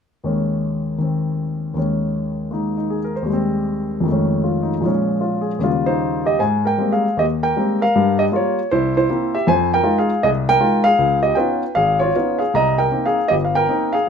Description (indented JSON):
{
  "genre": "solo jazz",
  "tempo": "156 BPM",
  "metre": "4/4",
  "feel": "swing 63% on 8ths, rubato",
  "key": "unclear",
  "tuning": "A4 = 443 Hz",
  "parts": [
    { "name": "warm baby grand piano", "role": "solo", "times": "0.2-14.1 s", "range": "G1 to Bb5", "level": "-16 LUFS", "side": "equal", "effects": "none" }
  ],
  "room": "moderate club reverb, RT60 0.7 s",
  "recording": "minimal, uncompressed stereo recording",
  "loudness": "-16 LUFS",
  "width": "side -7 dB against mid",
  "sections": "0.3-6.4 A section; 6.4-14.1 B section",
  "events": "none",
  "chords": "0.3 Eb7sus4; 3.3 Abmaj7/Eb; 4.1 F7alt; 4.8 Bbm7; 5.6 Eb9; 6.4 Abmaj9; 7.9 Gm7b5; 8.7 C7; 9.5 Fm7; 11.0 Db9; 12.5 Cm7"
}